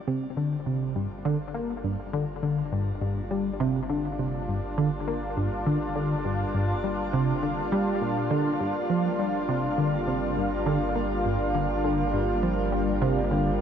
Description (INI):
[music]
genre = ambient, sequencer-driven space music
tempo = 102 BPM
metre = 4/4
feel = straight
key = G minor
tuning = A4 = 444 Hz
[part]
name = sweeping resonant pad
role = sustained chords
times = 0.0-13.6 s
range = G3 to F4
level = -29 LUFS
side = equal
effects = chorus
[part]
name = round analog bass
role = bass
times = 0.0-13.6 s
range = G1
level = -36 LUFS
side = equal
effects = none
[part]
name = tight sequenced synth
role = riff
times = 0.1-13.5 s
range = G2 to Bb3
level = -27 LUFS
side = equal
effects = chorus, ping-pong delay
[sound]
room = moderate shimmer reverb, RT60 8.0 s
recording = none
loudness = -24 LUFS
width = side -8 dB against mid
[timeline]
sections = 0.0-13.6 A section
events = fade-in on analog synth pad 0.0-13.6; fade-in on analog synth bass 0.0-13.6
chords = 0.0 Gm7